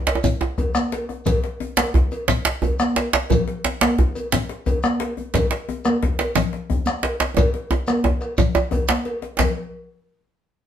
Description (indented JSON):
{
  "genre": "west african traditional, West African drum ensemble",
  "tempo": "118 BPM (dotted quarters)",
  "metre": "12/8",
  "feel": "straight",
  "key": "none",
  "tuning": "none",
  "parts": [
    { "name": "cowbell", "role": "percussion", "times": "0.1-9.6 s", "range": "none", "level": "-29 LUFS", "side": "equal", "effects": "none" },
    { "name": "djembe", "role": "percussion", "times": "0.1-9.5 s", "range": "none", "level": "-29 LUFS", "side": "left 4 dB", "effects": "none" },
    { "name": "djembe", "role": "percussion", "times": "0.1-9.5 s", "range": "none", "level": "-20 LUFS", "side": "right 3 dB", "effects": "none" },
    { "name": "congas", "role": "percussion", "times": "0.2-9.6 s", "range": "none", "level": "-24 LUFS", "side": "equal", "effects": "none" },
    { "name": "shekere", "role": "percussion", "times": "0.2-9.5 s", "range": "none", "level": "-29 LUFS", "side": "left 3 dB", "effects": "none" },
    { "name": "bombo", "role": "percussion", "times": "0.4-9.6 s", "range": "none", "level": "-23 LUFS", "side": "left 2 dB", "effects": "none" }
  ],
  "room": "wet studio reverb, RT60 0.6 s",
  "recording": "band playing live in one room",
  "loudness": "-19 LUFS",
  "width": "side -9 dB against mid",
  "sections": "0.0-9.4 A section; 9.4-10.7 B section",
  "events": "drum fill 7.4-9.4",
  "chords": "none"
}